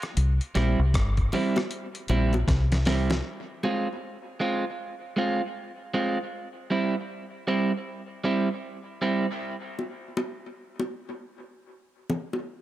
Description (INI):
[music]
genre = dub reggae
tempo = 78 BPM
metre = 4/4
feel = swing 62% on 16ths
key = F harmonic minor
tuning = A4 = 442 Hz
[part]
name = electric guitar at the edge of break-up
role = accompaniment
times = 0.0-9.3 s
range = G3 to F4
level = -28 LUFS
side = right 2 dB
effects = high-pass filter, dub echo
[part]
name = dusty soul sampler-style drum kit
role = drums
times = 0.0-3.2 s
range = hi-hat, kick drum, rim click, snare drum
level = -28 LUFS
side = equal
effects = none
[part]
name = bongos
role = percussion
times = 0.0-3.9, 9.8-12.5 s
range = none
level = -32 LUFS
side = left 2 dB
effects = high-pass filter on perc, dub echo
[part]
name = deep dub fingered electric bass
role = bass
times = 0.2-3.2 s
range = G1 to C2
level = -23 LUFS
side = equal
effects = none
[sound]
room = light reverb, digital ambience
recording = none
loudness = -25 LUFS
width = side -14 dB against mid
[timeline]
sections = 0.0-3.2 A section; 3.2-12.6 B section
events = drum fill 2.5-3.2; break 3.2-9.4, 9.4-12.6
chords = 0.2 C; 3.2 Fm; 6.3 C; 9.4 N.C.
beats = | 0.17 0.94 1.71 2.48 | 3.24 4.01 4.78 5.55 | 6.32 7.09 7.86 8.63 | 9.40 10.17 10.94 11.70